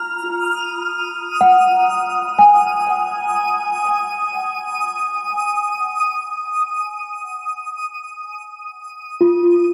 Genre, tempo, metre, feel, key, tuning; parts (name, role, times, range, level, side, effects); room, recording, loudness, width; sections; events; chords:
ambient; free time; A4 = 440 Hz
worn celesta; arpeggios; 0.0-9.7 s; E#4 to A#5; -18 LUFS; equal; diffuse ambient delay
twinkling granular texture; texture; 0.0-9.7 s; D#6 to E#6; -24 LUFS; equal; built-in reverb, shimmer reverb
wet huge ambient reverb, RT60 8.0 s; dreamy mix soaked in reverb, cassette tape; -18 LUFS; mono
0.0-9.7 A section
fade-out 5.5-9.7
0.3 B (rootless)